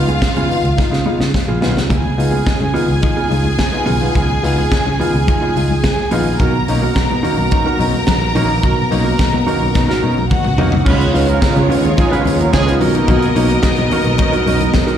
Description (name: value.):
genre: disco.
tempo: 107 BPM.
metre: 4/4.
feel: straight.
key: unclear.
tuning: A4 = 439 Hz.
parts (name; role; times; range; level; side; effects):
clear studio string section; second line; 0.0-15.0 s; Ab3 to A#5; -20 LUFS; equal; plate reverb, slapback echo.
warm concert grand piano; accompaniment; 0.0-14.6 s; B2 to F4; -22 LUFS; left 3 dB; plate reverb, slapback echo.
picked electric bass; bass; 0.0-14.7 s; Bb1 to Db3; -18 LUFS; equal; none.
mellow electric guitar; accompaniment; 0.1-15.0 s; Cb4 to Cb5; -22 LUFS; right 5 dB; plate reverb, slapback echo.
tight funk drum kit; drums; 0.1-15.0 s; crash cymbal, hi-hat, kick drum, snare drum, toms; -18 LUFS; equal; none.
congas; percussion; 0.1-14.9 s; none; -25 LUFS; left 7 dB; slapback echo.
dark French horn section; sustained chords; 6.4-15.0 s; Db3 to A#4; -24 LUFS; equal; plate reverb.
warm horn section; stabs; 10.9-12.8 s; F3 to Cb5; -23 LUFS; right 5 dB; tape echo, plate reverb, slapback echo.
room: light reverb.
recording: live gig heard through the venue's PA, recital hall reverb.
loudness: -12 LUFS.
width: side -9 dB against mid.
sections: 0.0-1.9 A section; 1.9-10.9 B section; 10.9-15.0 C section.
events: drum fill 0.8-1.9, 9.8-10.9.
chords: 0.0 Db7; 6.4 Bmaj7; 10.9 Db7; 12.8 Bmaj7.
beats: 0.22 0.78 1.34 | 1.91 2.47 3.03 3.59 | 4.15 4.71 5.28 5.84 | 6.40 6.96 7.52 8.08 | 8.64 9.20 9.75 10.31 | 10.87 11.42 11.98 12.53 | 13.09 13.64 14.19 14.74.